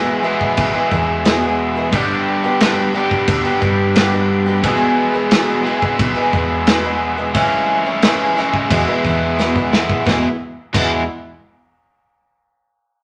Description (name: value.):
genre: folk rock and heartland rock.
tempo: 88 BPM.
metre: 4/4.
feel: straight.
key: E mixolydian.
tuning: A4 = 440 Hz.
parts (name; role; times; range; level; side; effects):
picked twelve-string acoustic guitar; accompaniment; 0.0-11.0 s; E2 to G#4; -21 LUFS; equal; none.
tonewheel organ; sustained chords; 0.0-10.4 s; E3 to E6; -30 LUFS; equal; none.
overdriven electric guitar; riff; 0.0-11.0 s; E2 to G#4; -22 LUFS; equal; none.
natural country drum kit; drums; 0.4-10.9 s; crash cymbal, kick drum, snare drum; -21 LUFS; equal; none.
hollow-body short-scale fingered electric bass; bass; 0.6-11.1 s; E1 to G2; -27 LUFS; equal; none.
room: moderate studio reverb, RT60 0.8 s.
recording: none.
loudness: -16 LUFS.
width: mono.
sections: 0.0-10.1 A section; 10.1-12.8 B section.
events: drum fill 9.4-10.1.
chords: 0.0 E; 1.9 G; 4.6 E; 7.3 C#m; 8.7 E.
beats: 0.57 1.25 | 1.93 2.60 3.28 3.96 | 4.63 5.31 5.99 6.67 | 7.35 8.03 8.70 9.38 | 10.06 10.74.